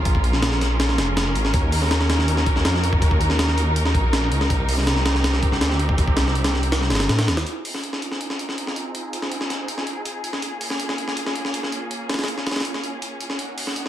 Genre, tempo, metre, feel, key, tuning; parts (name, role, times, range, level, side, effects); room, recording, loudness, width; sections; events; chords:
drum and bass, jungle; 162 BPM; 4/4; straight; F minor; A4 = 440 Hz
warm studio string section; sustained chords; 0.0-13.9 s; Bb3 to Bb4; -27 LUFS; equal; vintage 12-bit sampler grit, low-pass filter
detuned saw bass; bass; 0.0-7.4 s; F1 to A2; -21 LUFS; equal; tube saturation
breakbeat sampler-style drum kit; drums; 0.1-13.9 s; hi-hat, kick drum, snare drum; -22 LUFS; equal; high-pass filter on hats, high-pass filter on kick, high-pass filter on snare, high-pass filter on room
little or no reverb; vinyl crackle; -19 LUFS; side -12 dB against mid
0.0-7.5 A section; 7.5-13.9 B section
drop 0.0-7.5; kick drops out 6.7-7.5; filter sweep on string section 7.5-13.9
0.0 Bbm7; 1.5 Ebm7; 4.5 Cm7; 7.5 Fm7; 10.4 Bbm7